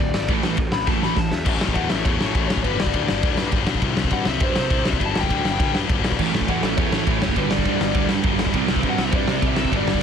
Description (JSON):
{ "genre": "punk rock", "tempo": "203 BPM", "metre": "4/4", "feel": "straight", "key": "unclear", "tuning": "A4 = 440 Hz", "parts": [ { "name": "lead guitar through a small cranked amp", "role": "melody", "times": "0.0-10.0 s", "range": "B4 to B5", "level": "-27 LUFS", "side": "left 4 dB", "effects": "overdrive" }, { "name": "crunchy overdriven guitar", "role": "riff", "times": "0.0-1.3, 6.2-10.0 s", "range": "D2 to C4", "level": "-24 LUFS", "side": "right 20 dB", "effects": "none" }, { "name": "distorted electric guitar", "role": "riff", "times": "0.0-10.0 s", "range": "D2 to C4", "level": "-26 LUFS", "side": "left 16 dB", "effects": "overdrive" }, { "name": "fuzz picked electric bass", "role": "bass", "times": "0.0-10.0 s", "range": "D1 to C3", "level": "-27 LUFS", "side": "equal", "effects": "overdrive" }, { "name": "raw garage drum kit", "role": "drums", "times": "0.1-10.0 s", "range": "crash cymbal, kick drum, ride cymbal, snare drum", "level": "-22 LUFS", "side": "equal", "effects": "none" } ], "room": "little or no reverb", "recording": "dense, heavily limited modern master", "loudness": "-18 LUFS", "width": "side -7 dB against mid", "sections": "0.0-1.5 A section; 1.5-10.0 B section", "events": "lead electric guitar solo 0.0-1.5; drum fill 0.9-1.5", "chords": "0.3 A5; 2.6 G5; 3.8 C5; 5.0 G5; 6.2 A; 7.4 G5; 8.5 C", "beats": "| 0.29 0.58 0.88 1.17 | 1.47 1.76 2.06 2.35 | 2.65 2.94 3.24 3.53 | 3.83 4.12 4.42 4.71 | 5.01 5.30 5.60 5.89 | 6.19 6.49 6.78 7.08 | 7.37 7.67 7.96 8.26 | 8.55 8.84 9.14 9.43 | 9.73 10.02" }